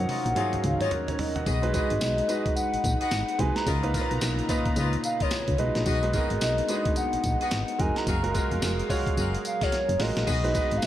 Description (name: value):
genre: R&B, new jack swing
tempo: 109 BPM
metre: 4/4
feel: swing 61% on 16ths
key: unclear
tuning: A4 = 441 Hz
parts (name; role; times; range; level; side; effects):
- hollow clarinet-like synth lead; melody; 0.0-10.9 s; C#5 to A#5; -30 LUFS; left 1 dB; chorus
- warm baby grand piano; accompaniment; 0.0-10.9 s; A#2 to F#5; -31 LUFS; right 2 dB; none
- lush unison pad; sustained chords; 0.0-10.9 s; C#3 to A#5; -35 LUFS; left 2 dB; chorus
- solid FM bass; bass; 0.0-10.9 s; E#1 to C#2; -28 LUFS; equal; none
- warm horn section; stabs; 0.1-10.7 s; E#4 to E#5; -36 LUFS; left 2 dB; tape echo
- breakbeat sampler-style drum kit; drums; 0.1-10.9 s; crash cymbal, hi-hat, kick drum, snare drum, tambourine, toms; -30 LUFS; equal; gated reverb
room: light reverb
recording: none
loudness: -24 LUFS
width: side -12 dB against mid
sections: 0.0-1.5 A section; 1.5-10.9 B section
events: drum fill 0.0-1.5, 9.7-10.3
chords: 0.0 D#m9; 1.5 B6; 3.7 C#13; 5.6 B6; 8.1 F#maj9; 10.3 B6